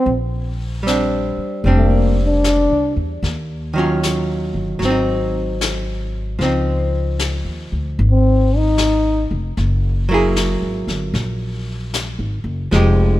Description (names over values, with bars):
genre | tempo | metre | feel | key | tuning
jazz ballad | 76 BPM | 4/4 | swing 67% on 8ths | unclear | A4 = 440 Hz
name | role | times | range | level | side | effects
mellow trombone | melody | 0.0-3.0, 8.1-9.3 s | Bb3 to Eb4 | -18 LUFS | left 1 dB | none
archtop guitar, miked and amplified | accompaniment | 0.0-13.2 s | Eb3 to Ab4 | -20 LUFS | right 1 dB | none
upright bass | bass | 0.1-13.2 s | F1 to E2 | -19 LUFS | equal | none
vintage brush drum kit | drums | 0.1-13.2 s | brushed snare drum, hi-hat, snare drum | -26 LUFS | left 4 dB | none
room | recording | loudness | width
little or no reverb | minimal, uncompressed stereo recording | -16 LUFS | side -15 dB against mid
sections
0.0-13.2 A section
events
trombone solo 0.0-13.2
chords
0.1 Bb69; 3.2 Ebm9; 4.8 Ab7; 6.4 Dbmaj9; 9.6 Gb9